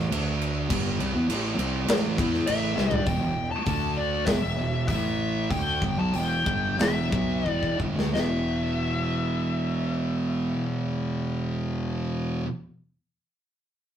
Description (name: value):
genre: stoner and doom metal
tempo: 86-101 BPM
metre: 4/4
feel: straight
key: E minor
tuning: A4 = 441 Hz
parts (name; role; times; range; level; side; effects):
- thick fuzz guitar; riff; 0.0-12.5 s; E2 to E4; -34 LUFS; left 4 dB; distortion
- thick fuzz guitar; riff; 0.0-12.5 s; E2 to E4; -28 LUFS; right 3 dB; distortion
- fuzz fingered electric bass; bass; 0.0-12.4 s; E1 to G2; -31 LUFS; left 1 dB; overdrive
- big rock drum kit; drums; 0.1-8.3 s; crash cymbal, hi-hat, kick drum, snare drum, toms; -29 LUFS; equal; none
- fuzz lead guitar; melody; 2.5-11.7 s; D5 to A5; -30 LUFS; left 3 dB; wah, distortion
room: moderate small room reverb, RT60 0.5 s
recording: rough rehearsal-room recording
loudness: -24 LUFS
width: side -9 dB against mid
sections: 0.0-3.1 A section; 3.1-8.1 B section; 8.1-10.9 C section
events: drum fill 2.8, 7.5-8.1; slowing down 3.1-8.1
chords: 0.1 D5; 0.7 A5; 3.1 Em; 3.7 D5; 4.3 E5; 4.9 A5; 5.5 Em; 8.1 E5